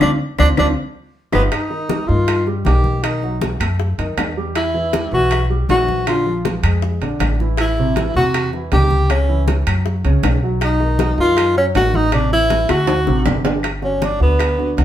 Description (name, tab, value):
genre	Afro-Cuban jazz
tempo	158 BPM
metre	4/4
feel	straight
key	unclear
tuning	A4 = 440 Hz
part	breathy tenor saxophone	melody	0.0-14.7 s	B3 to G4	-18 LUFS	equal	none
part	warm grand piano	accompaniment	0.0-14.8 s	C3 to A4	-24 LUFS	right 2 dB	none
part	upright bass	bass	0.0-14.8 s	G1 to G2	-18 LUFS	equal	none
part	bongos	percussion	0.0-14.8 s	none	-26 LUFS	left 6 dB	none
part	claves	percussion	0.0-14.6 s	none	-30 LUFS	left 2 dB	none
part	congas	percussion	0.0-14.8 s	none	-28 LUFS	left 1 dB	none
part	timbales	percussion	0.0-14.8 s	none	-26 LUFS	right 4 dB	none
room	wet studio reverb, RT60 0.8 s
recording	band playing live in one room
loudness	-15 LUFS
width	side -11 dB against mid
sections	0.0-1.5 A section; 1.5-13.6 B section; 13.6-14.8 C section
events	band accent 0.0-1.5; drum fill 0.4-1.5, 12.5-13.6; tenor saxophone solo 13.6-14.8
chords	0.0 Dm7; 0.8 G7(#5, no3); 1.5 Baug; 3.0 B7b13; 4.6 Emadd9; 6.1 Bb7; 7.6 Am7; 9.1 C#m; 9.9 F#5; 10.6 B; 12.1 Am; 12.9 D7; 13.6 Gmaj7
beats	| 0.01 0.39 0.77 1.15 | 1.53 1.91 2.28 2.66 | 3.04 3.42 3.80 4.18 | 4.55 4.93 5.31 5.69 | 6.07 6.45 6.83 7.21 | 7.58 7.96 8.34 8.72 | 9.10 9.48 9.86 10.23 | 10.61 10.99 11.37 11.75 | 12.13 12.51 12.88 13.26 | 13.64 14.02 14.40 14.78